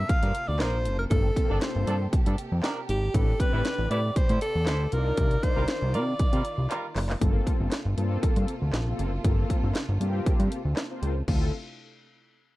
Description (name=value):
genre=early-eighties boogie funk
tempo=118 BPM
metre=4/4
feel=straight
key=unclear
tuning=A4 = 438 Hz
part: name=breathy alto saxophone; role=melody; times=0.0-6.9 s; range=G4 to F5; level=-30 LUFS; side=equal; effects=slapback echo
part: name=warm studio string section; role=sustained chords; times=0.0-11.5 s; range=C3 to D5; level=-39 LUFS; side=right 1 dB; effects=none
part: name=fat analog bass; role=bass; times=0.0-11.5 s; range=F#1 to C3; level=-27 LUFS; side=equal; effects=none
part: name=techno drum kit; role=drums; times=0.1-11.4 s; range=crash cymbal, handclaps, hi-hat, kick drum, snare drum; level=-26 LUFS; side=equal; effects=none
part: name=clear horn section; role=second line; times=0.2-6.9 s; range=F3 to C5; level=-36 LUFS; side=right 2 dB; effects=none
part: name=mellow synth brass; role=accompaniment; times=1.1-11.5 s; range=Bb3 to D5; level=-35 LUFS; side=left 4 dB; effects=chorus
room=small room ambience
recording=dark, warm production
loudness=-24 LUFS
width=side -18 dB against mid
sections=0.0-7.2 A section; 7.2-11.3 B section; 11.3-12.6 C section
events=drum fill 6.7-7.2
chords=0.0 Gm11; 3.1 Am11; 4.9 Cm11; 7.2 Gm11; 11.3 Dm7